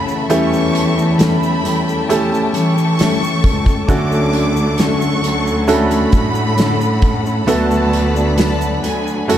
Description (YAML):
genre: pop ballad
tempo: 67 BPM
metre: 4/4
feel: straight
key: unclear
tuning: A4 = 440 Hz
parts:
  - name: bright symphonic violin section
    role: second line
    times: 0.0-9.4 s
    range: G#5 to D6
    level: -23 LUFS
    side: right 2 dB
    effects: none
  - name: clear baby grand piano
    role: accompaniment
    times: 0.0-9.4 s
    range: D3 to A4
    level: -18 LUFS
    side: right 2 dB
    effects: none
  - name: warm studio string section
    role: sustained chords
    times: 0.0-9.4 s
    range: A3 to C#6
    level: -25 LUFS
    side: left 3 dB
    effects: none
  - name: fingerpicked plugged-in steel-string acoustic guitar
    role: arpeggios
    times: 0.0-9.4 s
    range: F#2 to A4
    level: -21 LUFS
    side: left 4 dB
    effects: none
  - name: warm studio cello section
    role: bass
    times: 0.0-9.4 s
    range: C#2 to E3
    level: -19 LUFS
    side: equal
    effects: none
  - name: tube shaker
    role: percussion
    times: 0.1-9.4 s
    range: none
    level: -38 LUFS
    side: left 7 dB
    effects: none
  - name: loose indie drum kit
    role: drums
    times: 0.3-9.4 s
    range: hi-hat, kick drum, snare drum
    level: -18 LUFS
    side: equal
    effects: none
room: light reverb, studio ambience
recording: dark, warm production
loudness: -13 LUFS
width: side -10 dB against mid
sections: 0.0-9.4 A section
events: none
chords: 0.3 A7/E; 3.9 Dmaj7; 7.5 Bm7/D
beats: | 0.30 1.20 2.10 2.99 | 3.88 4.78 5.68 6.57 | 7.47 8.38 9.29